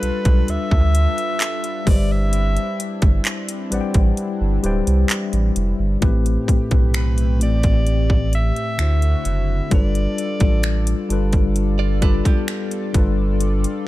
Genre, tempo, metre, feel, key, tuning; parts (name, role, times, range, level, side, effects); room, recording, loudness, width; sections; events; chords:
contemporary R&B; 65 BPM; 4/4; straight; A minor; A4 = 441 Hz
mellow alto saxophone; melody; 0.0-11.1 s; B4 to E5; -27 LUFS; equal; ping-pong delay
mellow tine electric piano; accompaniment; 0.0-13.9 s; A2 to G5; -24 LUFS; left 4 dB; medium stereo tremolo
chorused pulse-width pad; sustained chords; 0.0-13.9 s; D3 to D5; -32 LUFS; right 1 dB; sidechain pumping
warm sub bass; bass; 0.0-13.7 s; D1 to D2; -19 LUFS; equal
trap drum kit; drums; 0.0-13.9 s; finger snaps, handclaps, hi-hat, kick drum; -18 LUFS; equal
direct-recorded clean electric guitar; arpeggios; 11.8-12.9 s; B3 to D5; -30 LUFS; right 11 dB; harmonic tremolo, ping-pong delay
digital ambience; -16 LUFS; side -16 dB against mid
0.0-6.0 A section; 6.0-13.9 B section
kick muted 4.2-6.0
0.0 G9; 1.9 Cmaj9/G; 6.0 Am9; 8.8 D9; 9.7 G9